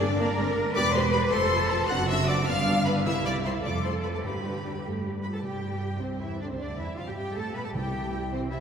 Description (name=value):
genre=quick classical-period movement for symphony orchestra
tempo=104 BPM (dotted quarters)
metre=6/8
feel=straight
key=C major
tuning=A4 = 439 Hz
part: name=rich chamber violin section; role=melody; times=0.0-8.6 s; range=C5 to F#6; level=-32 LUFS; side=left 4 dB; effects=none
part: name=rich symphonic violin section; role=second line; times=0.0-8.6 s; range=D4 to B5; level=-32 LUFS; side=left 2 dB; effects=none
part: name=dark chamber viola section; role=accompaniment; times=0.0-8.6 s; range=C3 to G4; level=-34 LUFS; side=equal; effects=none
part: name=rich chamber double bass section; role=bass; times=0.0-8.6 s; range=E1 to B2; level=-30 LUFS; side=right 2 dB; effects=none
part: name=rich symphonic cello section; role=bass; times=0.0-8.6 s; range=C4 to B4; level=-32 LUFS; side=right 1 dB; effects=none
part: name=timpani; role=percussion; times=0.0-0.1, 3.1-8.3 s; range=G2 to C3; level=-38 LUFS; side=equal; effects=none
room=wet church reverb, RT60 3.9 s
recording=none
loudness=-25 LUFS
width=side -7 dB against mid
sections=0.0-5.4 A section; 5.4-8.6 B section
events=none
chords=0.0 Gm; 0.8 Em; 1.3 F; 1.9 D7/F#; 2.5 G7; 3.1 C; 3.7 F; 4.2 G; 5.4 C/G; 6.6 G7/D; 7.8 C